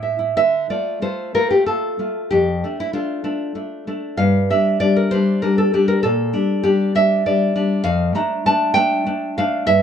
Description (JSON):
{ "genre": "romantic piece for solo classical guitar", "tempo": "85-102 BPM", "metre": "3/4", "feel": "rubato", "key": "D minor", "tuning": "A4 = 439 Hz", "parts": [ { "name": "nylon-string guitar", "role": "solo", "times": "0.0-9.8 s", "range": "F2 to Bb5", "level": "-16 LUFS", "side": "equal", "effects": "none" } ], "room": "light reverb", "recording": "dark, warm production", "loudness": "-16 LUFS", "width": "side -8 dB against mid", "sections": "0.4-9.8 A section", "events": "none", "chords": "0.4 Dm; 2.3 Dm/F; 4.2 G5; 6.0 Gm/Bb; 7.8 Dm/F", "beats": "| 0.36 1.01 1.67 | 2.32 2.95 3.56 | 4.19 4.80 5.42 | 6.03 6.63 7.23 | 7.83 8.44 9.05 | 9.67" }